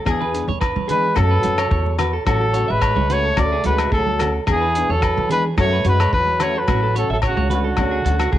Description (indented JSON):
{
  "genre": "highlife guitar band",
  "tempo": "109 BPM",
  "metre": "4/4",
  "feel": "straight",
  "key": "A major",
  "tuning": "A4 = 440 Hz",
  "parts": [
    { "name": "electric guitar at the edge of break-up", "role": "arpeggios", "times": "0.0-8.4 s", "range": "F#4 to E5", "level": "-27 LUFS", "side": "right 7 dB", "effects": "cassette tape, analog delay" },
    { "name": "clear trumpet", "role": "melody", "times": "0.1-8.4 s", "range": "F#4 to D5", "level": "-21 LUFS", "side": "left 1 dB", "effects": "none" },
    { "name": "mellow trombone", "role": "second line", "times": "0.1-8.4 s", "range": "C#3 to A3", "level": "-28 LUFS", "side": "right 8 dB", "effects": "cassette tape, analog delay" },
    { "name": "nylon-string guitar", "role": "accompaniment", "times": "0.1-8.2 s", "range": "E3 to G#4", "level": "-28 LUFS", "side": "left 7 dB", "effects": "cassette tape" },
    { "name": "upright bass", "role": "bass", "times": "0.1-8.4 s", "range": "A1 to E3", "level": "-21 LUFS", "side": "equal", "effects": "none" },
    { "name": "cloth-damped thuddy drum kit", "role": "drums", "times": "0.1-8.4 s", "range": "hi-hat, kick drum, rim click", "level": "-25 LUFS", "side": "equal", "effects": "cassette tape" },
    { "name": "agogo bells", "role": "percussion", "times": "0.1-8.3 s", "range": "none", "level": "-28 LUFS", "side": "left 10 dB", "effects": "none" },
    { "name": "congas", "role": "percussion", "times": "0.2-8.2 s", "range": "none", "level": "-30 LUFS", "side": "right 9 dB", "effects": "none" }
  ],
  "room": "small room ambience",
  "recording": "home recording on cassette",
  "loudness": "-16 LUFS",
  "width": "side -12 dB against mid",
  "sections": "0.0-8.4 A section",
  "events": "none",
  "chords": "0.1 E7; 1.2 F#m; 2.3 A6; 3.4 Dmaj7; 4.5 E7; 5.6 F#m; 6.7 A6; 7.8 Dmaj7"
}